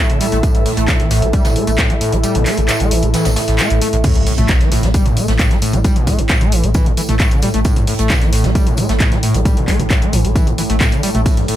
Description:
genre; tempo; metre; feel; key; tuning
driving peak-time techno; 133 BPM; 4/4; straight; unclear; A4 = 439 Hz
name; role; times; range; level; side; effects
overdriven acid bass; riff; 0.0-11.5 s; A1 to A3; -20 LUFS; equal; distortion, lush chorus, sidechain pumping, ping-pong delay
deep dark ambient pad; drone; 0.1-11.6 s; A2; -23 LUFS; right 1 dB; chorus, built-in reverb, sidechain pumping
airy breathy pad; texture; 0.0-4.0 s; E4 to E5; -22 LUFS; equal; chorus, sidechain pumping
warm sub bass; bass; 0.1-11.5 s; A1; -19 LUFS; equal; tube saturation, sidechain pumping, low-pass filter
punchy analog drum machine; drums; 0.1-11.6 s; crash cymbal, handclaps, hi-hat, ride cymbal, toms; -20 LUFS; equal; none
jazz brush drum kit; drums; 0.2-11.6 s; hi-hat, snare drum, tambourine; -29 LUFS; right 1 dB; sidechain pumping on hats, high-pass filter on hats, high-pass filter on snare, sidechain pumping on perc, high-pass filter on perc, high-pass filter on room
electronic kick drum; drums; 0.4-11.3 s; none; -16 LUFS; equal; overdrive
impact; sound effects; 4.0-5.8 s; none; -23 LUFS; equal; none
room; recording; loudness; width
light reverb, digital ambience; none; -12 LUFS; side -12 dB against mid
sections
0.0-4.0 A section; 4.0-11.6 B section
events
kick drops out 2.2-4.0; drop 4.0-11.6; impact 4.0-5.8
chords
0.0 A5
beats
| 0.43 0.88 1.33 1.78 | 2.24 2.69 3.14 3.59 | 4.04 4.49 4.94 5.39 | 5.85 6.30 6.75 7.20 | 7.65 8.10 8.55 9.00 | 9.46 9.91 10.36 10.81 | 11.26

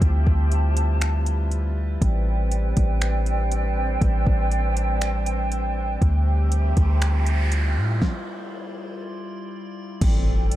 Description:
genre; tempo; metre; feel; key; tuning
hip hop, atmospheric cloud-rap; 120 BPM; 4/4; half-time; unclear; A4 = 440 Hz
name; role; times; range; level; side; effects
large flute ensemble; sustained chords; 0.0-10.6 s; C4 to A5; -29 LUFS; right 2 dB; sidechain pumping
soft 808-style bass; bass; 0.0-10.6 s; A1 to A2; -21 LUFS; equal; none
smooth R&B drum kit; drums; 0.0-10.6 s; crash cymbal, finger snaps, hi-hat, kick drum, snare drum; -23 LUFS; equal; overdrive
drifting glass-harmonics texture; texture; 0.0-10.6 s; G3 to D5; -34 LUFS; equal; chorus, built-in reverb
noise sweep and impact; sound effects; 6.5-10.6 s; none; -31 LUFS; right 1 dB; none
room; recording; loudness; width
little or no reverb; dark, warm production; -20 LUFS; side -14 dB against mid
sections
0.0-10.0 A section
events
noise sweep 6.5-10.0; stop 8.0-10.0; impact 10.0-10.6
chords
0.0 Dm11; 2.0 Am11; 6.0 Dm11; 10.0 Am11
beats
| 0.02 0.52 1.02 1.52 | 2.02 2.52 3.02 3.52 | 4.02 4.52 5.02 5.52 | 6.02 6.52 7.02 7.52 | 8.02 8.52 9.02 9.52 | 10.02 10.52

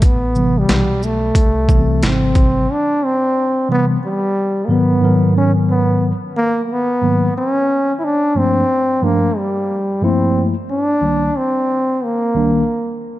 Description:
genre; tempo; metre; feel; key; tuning
hip hop, jazz-hop; 90 BPM; 4/4; swing 65% on 16ths; unclear; A4 = 439 Hz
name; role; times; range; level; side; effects
warm trombone; melody; 0.0-13.0 s; G3 to E4; -17 LUFS; equal; tape echo
upright bass; bass; 0.0-2.7 s; G#1 to C2; -20 LUFS; equal; none
boom bap sampler-style drum kit; drums; 0.0-2.6 s; hi-hat, kick drum, shaker, snare drum; -14 LUFS; equal; none
mellow tine electric piano; accompaniment; 0.3-12.6 s; C2 to Bb4; -17 LUFS; equal; slow stereo tremolo
room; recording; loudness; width
light reverb; dark, warm production; -14 LUFS; side -15 dB against mid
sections
0.0-2.7 A section; 2.7-13.2 B section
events
none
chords
0.0 Am9; 2.7 G#7#9; 5.0 G#m9; 8.0 Gm9; 10.7 Cm9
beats
| 0.02 0.69 1.35 2.02 | 2.69 3.35 4.02 4.69 | 5.36 6.02 6.69 7.36 | 8.02 8.69 9.36 10.02 | 10.69 11.36 12.02 12.69

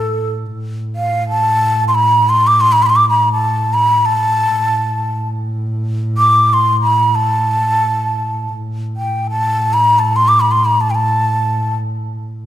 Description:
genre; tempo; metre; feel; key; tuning
Arabic maqam ensemble; free time; none; none; A maqam bayati; A4 = 440 Hz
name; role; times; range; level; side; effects
breathy ney; melody; 0.0-11.7 s; A4 to D6; -13 LUFS; equal; none
dark double bass; drone; 0.0-12.5 s; A2; -19 LUFS; equal; none
room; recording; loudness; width
moderate concert hall reverb, RT60 1.7 s; none; -12 LUFS; side -12 dB against mid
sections
0.5-12.5 A section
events
none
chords
none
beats
free time

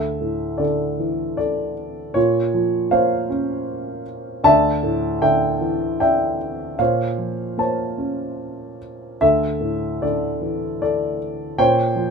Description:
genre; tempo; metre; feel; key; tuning
classical, lyrical solo piano; 77 BPM; 3/4; rubato; D minor; A4 = 440 Hz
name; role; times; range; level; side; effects
dark baby grand piano; solo; 0.0-12.1 s; D2 to A5; -18 LUFS; equal; none
room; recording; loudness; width
light reverb; minimal, uncompressed stereo recording; -18 LUFS; side -5 dB against mid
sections
0.0-12.1 A section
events
none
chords
0.0 Dsus2; 2.2 Bbmadd9; 4.4 Dsus2; 6.8 Bbmadd9; 9.2 Dsus2; 11.6 Bbmadd9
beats
0.60 1.38 | 2.15 2.92 3.68 | 4.45 5.22 6.00 | 6.79 7.58 8.40 | 9.21 10.03 10.82 | 11.59

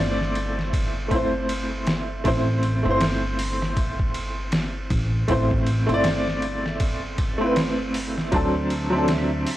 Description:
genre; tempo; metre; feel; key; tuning
trip hop; 79 BPM; 4/4; swing 60% on 16ths; A dorian; A4 = 439 Hz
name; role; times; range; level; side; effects
clear upright piano; accompaniment; 0.0-9.6 s; F#3 to D5; -24 LUFS; equal; tremolo, tape echo
upright bass; bass; 0.0-9.4 s; G1 to D2; -27 LUFS; equal; tube saturation
trip hop sampler-style drum kit; drums; 0.2-9.6 s; hi-hat, kick drum, ride cymbal, snare drum; -26 LUFS; equal; overdrive, small room reverb
backwards swelling texture; texture; 8.8-9.6 s; E5; -38 LUFS; right 1 dB; built-in reverb
room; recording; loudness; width
digital ambience; dry, gritty hardware recording, vinyl crackle; -21 LUFS; side -14 dB against mid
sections
0.0-9.6 A section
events
none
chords
0.0 Am; 8.3 D7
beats
0.73 1.49 | 2.25 3.01 3.77 4.53 | 5.29 6.05 6.81 7.57 | 8.32 9.08

